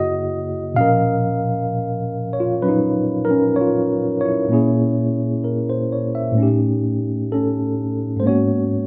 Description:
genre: jazz ballad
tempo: 64 BPM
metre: 4/4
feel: swing 68% on 8ths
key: unclear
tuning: A4 = 442 Hz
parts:
  - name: mellow tine electric piano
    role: solo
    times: 0.0-8.9 s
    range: Gb2 to E#5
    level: -20 LUFS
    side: equal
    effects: none
room: light reverb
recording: none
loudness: -20 LUFS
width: mono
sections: 0.0-8.9 A section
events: none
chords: 0.0 Gb13; 0.8 Bmaj9#11; 4.5 Bbm7b5; 6.4 A7#11; 8.2 Abm11

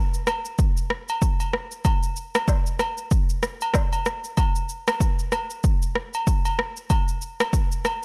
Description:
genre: afrobeats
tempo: 95 BPM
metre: 4/4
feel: swing 58% on 16ths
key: none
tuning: none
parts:
  - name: deep house drum kit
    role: drums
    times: 0.1-8.0 s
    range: kick drum, rim click, shaker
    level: -24 LUFS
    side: equal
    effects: overdrive
  - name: agogo bells and woodblock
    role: percussion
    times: 0.3-8.0 s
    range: none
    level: -32 LUFS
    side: equal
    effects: none
room: little or no reverb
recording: dry, gritty hardware recording, transformer saturation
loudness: -24 LUFS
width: mono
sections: 0.0-8.0 A section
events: none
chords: none

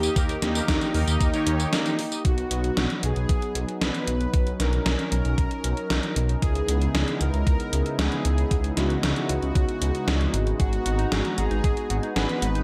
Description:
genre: synthwave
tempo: 115 BPM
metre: 4/4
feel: straight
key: B major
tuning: A4 = 440 Hz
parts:
  - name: soft supersaw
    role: melody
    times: 0.0-12.6 s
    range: D#4 to B4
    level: -33 LUFS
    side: equal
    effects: tape echo
  - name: warm analog pad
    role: sustained chords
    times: 0.0-12.6 s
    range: C#3 to A#5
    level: -33 LUFS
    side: equal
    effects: chorus, sidechain pumping
  - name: electric guitar at the edge of break-up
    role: riff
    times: 0.0-2.2 s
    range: D#4 to D#5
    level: -40 LUFS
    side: equal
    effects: none
  - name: detuned saw bass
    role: bass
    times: 0.0-12.6 s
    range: G#1 to D#2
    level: -28 LUFS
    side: equal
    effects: chorus, sidechain pumping
  - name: gated 80s digital drum machine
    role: drums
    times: 0.0-12.6 s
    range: hi-hat, snare drum, tambourine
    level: -30 LUFS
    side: equal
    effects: gated reverb, gated reverb snare, overdrive
  - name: analog synth brass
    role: stabs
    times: 0.2-1.9 s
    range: D#3 to C#5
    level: -34 LUFS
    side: equal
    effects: chorus, delay
  - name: electronic kick drum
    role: drums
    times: 0.2-11.7 s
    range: none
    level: -26 LUFS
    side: equal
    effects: overdrive
  - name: mellow electric guitar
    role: arpeggios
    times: 10.6-12.6 s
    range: D#4 to G#4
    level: -36 LUFS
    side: equal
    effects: delay
room: light reverb, digital ambience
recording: none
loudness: -24 LUFS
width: mono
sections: 0.0-2.2 A section; 2.2-12.6 B section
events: break 1.7-2.2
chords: 0.0 D#; 2.2 Bmaj7; 6.4 C#m7; 10.6 G#m7

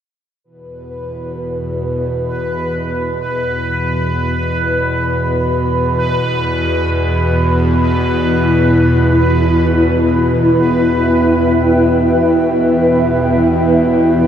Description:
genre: dark ambient drone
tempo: free time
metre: none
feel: none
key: E minor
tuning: A4 = 441 Hz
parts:
  - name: bowed-like drone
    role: drone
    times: 0.8-14.3 s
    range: E2 to B2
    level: -15 LUFS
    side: equal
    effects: built-in reverb
  - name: bubbling stepped-filter texture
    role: texture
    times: 0.4-14.3 s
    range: B4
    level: -20 LUFS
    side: equal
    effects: chorus, built-in reverb, shimmer reverb
  - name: granular cloud pad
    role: sustained chords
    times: 8.2-14.3 s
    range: E4 to G5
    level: -14 LUFS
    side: right 1 dB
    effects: built-in reverb, shimmer reverb
room: wet cathedral reverb, RT60 5.6 s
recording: in a vast, echoing space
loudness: -12 LUFS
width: side -9 dB against mid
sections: 0.4-14.3 A section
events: none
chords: 0.4 Em

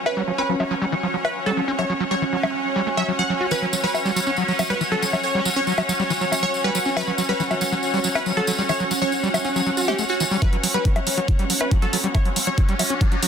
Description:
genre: psychedelic trance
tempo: 139 BPM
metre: 4/4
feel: straight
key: unclear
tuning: A4 = 435 Hz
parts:
  - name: bubbling stepped-filter texture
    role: sustained chords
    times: 0.0-13.3 s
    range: C#4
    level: -28 LUFS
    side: right 2 dB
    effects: chorus, built-in reverb, sidechain pumping
  - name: rich symphonic string section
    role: texture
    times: 0.0-13.3 s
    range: C#4 to F#5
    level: -27 LUFS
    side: left 1 dB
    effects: sidechain pumping
  - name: supersaw stab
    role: melody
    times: 0.1-12.6 s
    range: F#4 to F#5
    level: -27 LUFS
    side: right 1 dB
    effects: phaser, sidechain pumping, digital delay
  - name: electronic bongos and hi-hat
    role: drums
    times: 0.1-13.3 s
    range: none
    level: -26 LUFS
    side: left 2 dB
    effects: overdrive, low-pass filter on hats, low-pass filter on perc, low-pass filter on snare, low-pass filter on room
  - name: overdriven acid bass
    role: riff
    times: 0.2-13.3 s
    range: E3 to F#4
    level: -25 LUFS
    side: equal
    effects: distortion, auto-pan, sidechain pumping, digital delay
  - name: tambourine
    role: percussion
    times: 3.5-10.4 s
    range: none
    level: -28 LUFS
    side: equal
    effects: none
  - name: electronic kick drum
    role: drums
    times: 10.4-13.1 s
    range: none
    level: -19 LUFS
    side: equal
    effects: overdrive
  - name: riser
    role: sound effects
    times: 11.1-13.3 s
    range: none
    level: -34 LUFS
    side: equal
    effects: none
room: moderate lush hall reverb, RT60 1.9 s, digital ambience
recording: dense, heavily limited modern master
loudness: -19 LUFS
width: side -7 dB against mid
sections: 0.0-10.4 A section; 10.4-13.3 B section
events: build-up 10.4-13.3; riser 11.1-13.3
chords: 0.0 F#5

